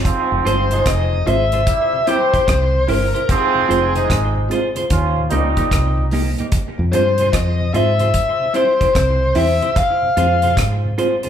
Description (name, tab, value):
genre	roots reggae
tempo	74 BPM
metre	4/4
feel	swing 65% on 16ths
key	F minor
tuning	A4 = 440 Hz
part	clear trombone section	second line	0.0-6.1 s	Ab2 to G4	-20 LUFS	right 3 dB	none
part	deep reggae drum kit	drums	0.1-11.3 s	hi-hat, kick drum, rim click	-21 LUFS	equal	none
part	mellow tonewheel organ	accompaniment	0.3-11.3 s	Eb2 to F4	-27 LUFS	right 2 dB	slow rotary speaker
part	fingered electric bass	bass	0.3-10.9 s	F1 to Ab2	-19 LUFS	equal	none
part	bluesy overdriven lead guitar	melody	0.5-10.5 s	Ab4 to F5	-18 LUFS	left 2 dB	distortion
part	clean electric guitar	accompaniment	0.5-11.3 s	Bb3 to C5	-23 LUFS	equal	spring reverb, dub echo
room	moderate large studio reverb, RT60 1.2 s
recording	band playing live in one room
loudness	-14 LUFS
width	side -9 dB against mid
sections	0.1-11.3 A section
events	none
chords	0.1 Fm; 1.7 C; 3.3 Fm; 4.9 Eb; 6.5 Fm; 8.1 C; 9.8 Fm